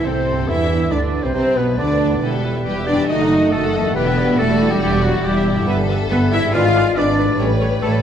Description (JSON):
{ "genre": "classical", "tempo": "139 BPM", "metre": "4/4", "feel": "rubato", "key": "unclear", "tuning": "A4 = 440 Hz", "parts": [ { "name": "clear symphonic violin section", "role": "melody", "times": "0.0-8.0 s", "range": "E4 to B4", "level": "-27 LUFS", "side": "left 7 dB", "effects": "none" }, { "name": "clear clarinet", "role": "second line", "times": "0.0-8.0 s", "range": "F#4 to E#5", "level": "-28 LUFS", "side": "left 2 dB", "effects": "none" }, { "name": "flute section", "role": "second line", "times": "0.0-8.0 s", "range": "C4 to E5", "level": "-29 LUFS", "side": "right 2 dB", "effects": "none" }, { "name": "warm oboe", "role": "second line", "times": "0.0-7.9 s", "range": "F#4 to E#5", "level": "-28 LUFS", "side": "right 1 dB", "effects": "none" }, { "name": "warm symphonic violin section", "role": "second line", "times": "0.0-8.0 s", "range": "F#4 to E#5", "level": "-29 LUFS", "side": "left 3 dB", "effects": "none" }, { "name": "mellow bassoon", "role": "accompaniment", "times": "0.0-8.0 s", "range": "B2 to A3", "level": "-27 LUFS", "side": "right 2 dB", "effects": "none" }, { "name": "rich symphonic viola section", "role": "accompaniment", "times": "0.0-7.9 s", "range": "B3 to F#5", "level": "-27 LUFS", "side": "right 1 dB", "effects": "none" }, { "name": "dark French horn section", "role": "sustained chords", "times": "0.0-7.9 s", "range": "F#3 to E#4", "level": "-22 LUFS", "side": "left 3 dB", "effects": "none" }, { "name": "warm trombone section", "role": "sustained chords", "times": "0.0-7.5 s", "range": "B2 to C#4", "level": "-27 LUFS", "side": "right 4 dB", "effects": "none" }, { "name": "concert harp", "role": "arpeggios", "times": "0.0-8.0 s", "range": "E2 to D5", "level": "-27 LUFS", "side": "left 6 dB", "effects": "none" }, { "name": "rich symphonic double bass section", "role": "bass", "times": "0.0-8.0 s", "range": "E1 to E2", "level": "-22 LUFS", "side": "right 2 dB", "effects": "none" }, { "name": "warm symphonic cello section", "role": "bass", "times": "0.0-8.0 s", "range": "F#3 to E#4", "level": "-24 LUFS", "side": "right 3 dB", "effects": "none" } ], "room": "wet scoring stage reverb, RT60 1.6 s", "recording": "none", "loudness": "-15 LUFS", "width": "side -8 dB against mid", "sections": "0.0-8.0 A section", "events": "none", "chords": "0.5 G; 2.2 Em; 3.1 D#dim/F#; 4.0 Em7; 5.7 Em/G; 6.5 G#dim7; 7.4 A7" }